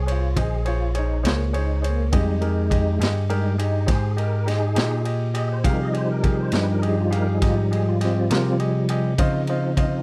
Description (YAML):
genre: slow blues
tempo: 68 BPM (dotted quarters)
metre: 12/8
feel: straight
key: F minor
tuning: A4 = 440 Hz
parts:
  - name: tonewheel organ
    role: sustained chords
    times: 0.0-10.0 s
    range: F3 to Eb5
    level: -28 LUFS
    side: equal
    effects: slow rotary speaker, chorus vibrato
  - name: bell-like tine electric piano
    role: bass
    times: 0.0-10.0 s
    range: Bb1 to Db3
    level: -25 LUFS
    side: equal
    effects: phaser
  - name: clear upright piano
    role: accompaniment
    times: 0.1-10.0 s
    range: F4 to F5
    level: -31 LUFS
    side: equal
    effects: none
  - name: raw garage drum kit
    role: drums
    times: 0.1-9.9 s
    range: kick drum, ride cymbal, snare drum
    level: -28 LUFS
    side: equal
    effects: none
room: little or no reverb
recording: dry, close 1970s-style studio recording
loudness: -22 LUFS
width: mono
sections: 0.0-10.0 A section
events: tonewheel organ solo 0.0-10.0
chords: 0.0 Bbm7; 2.1 Fm7; 9.2 Dbmaj7